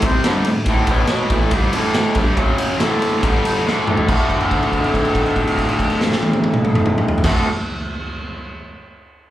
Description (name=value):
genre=garage rock duo or trio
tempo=140 BPM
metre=4/4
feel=straight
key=D major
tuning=A4 = 436 Hz
part: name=raw garage guitar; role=riff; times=0.0-7.5 s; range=D2 to F#4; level=-18 LUFS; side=equal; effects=overdrive, slapback echo
part: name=raw garage drum kit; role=drums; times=0.0-7.3 s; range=crash cymbal, kick drum, ride cymbal, snare drum, toms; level=-19 LUFS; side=equal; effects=none
room=light reverb, studio ambience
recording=live gig heard through the venue's PA, club reverb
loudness=-15 LUFS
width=side -13 dB against mid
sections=0.0-4.1 A section; 4.1-7.5 B section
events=drum fill 3.7-4.1; held note 4.1-7.2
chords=0.0 D5; 0.9 B5; 1.3 D5; 2.4 F#5; 2.8 D5; 3.2 G5; 3.7 D5; 4.1 D